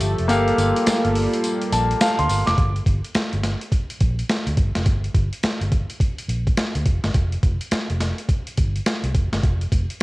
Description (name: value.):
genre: R&B, new jack swing.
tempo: 105 BPM.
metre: 4/4.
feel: swing 63% on 16ths.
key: G dorian.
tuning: A4 = 441 Hz.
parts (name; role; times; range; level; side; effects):
warm concert grand piano; accompaniment; 0.0-2.7 s; A3 to D6; -20 LUFS; left 1 dB; cassette tape.
chorused pulse-width pad; sustained chords; 0.0-2.6 s; F3 to E5; -26 LUFS; right 2 dB; cassette tape.
vintage muted fingered electric bass; bass; 0.0-10.0 s; F1 to D2; -23 LUFS; equal; transformer saturation.
boom bap sampler-style drum kit; drums; 0.0-10.0 s; hi-hat, kick drum, snare drum, tambourine; -21 LUFS; equal; none.
room: digital ambience.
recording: home recording on cassette.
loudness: -19 LUFS.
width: side -20 dB against mid.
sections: 0.0-2.6 A section; 2.6-10.0 B section.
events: kick muted 0.3-2.6; grand piano fill 1.4-2.6.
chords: 0.3 Gm9; 2.6 Gm; 7.1 N.C..